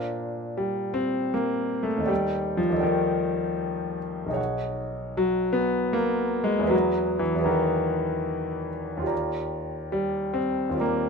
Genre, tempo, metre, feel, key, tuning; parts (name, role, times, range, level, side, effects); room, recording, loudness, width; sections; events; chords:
classical, impressionist solo piano; 77 BPM; 3/4; uneven beats, rubato; A4 = 438 Hz
clear grand piano; solo; 0.0-11.1 s; B1 to A#5; -24 LUFS; left 1 dB
light reverb; minimal, uncompressed stereo recording; -24 LUFS; side -5 dB against mid
0.0-11.1 A section
0.0 Bbadd9; 2.1 Ebmaj7#11; 4.4 B69; 6.7 Emaj7#11; 9.1 Ebmaj9